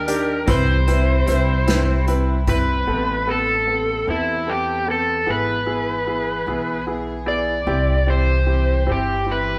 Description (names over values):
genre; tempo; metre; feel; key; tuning
six-eight pop ballad; 50 BPM (dotted quarters); 6/8; straight; C major; A4 = 440 Hz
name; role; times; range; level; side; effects
overdriven slide guitar; melody; 0.0-9.6 s; E4 to D5; -24 LUFS; equal; none
warm studio string section; sustained chords; 0.0-9.6 s; C3 to A4; -35 LUFS; equal; none
direct-recorded clean electric guitar; arpeggios; 0.0-2.9 s; C3 to B4; -34 LUFS; equal; none
upright bass; bass; 0.0-9.6 s; G1 to E2; -24 LUFS; equal; none
warm baby grand piano; accompaniment; 0.1-9.5 s; B3 to B4; -28 LUFS; equal; none
unplugged drum kit; drums; 0.1-2.7 s; hi-hat, kick drum, snare drum; -26 LUFS; equal; none
room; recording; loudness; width
wet large studio reverb, RT60 1.1 s; band playing live in one room; -20 LUFS; mono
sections
0.0-2.9 A section; 2.9-9.6 B section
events
none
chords
0.5 Cmaj7; 2.9 Amadd9; 5.3 E/G#; 7.7 C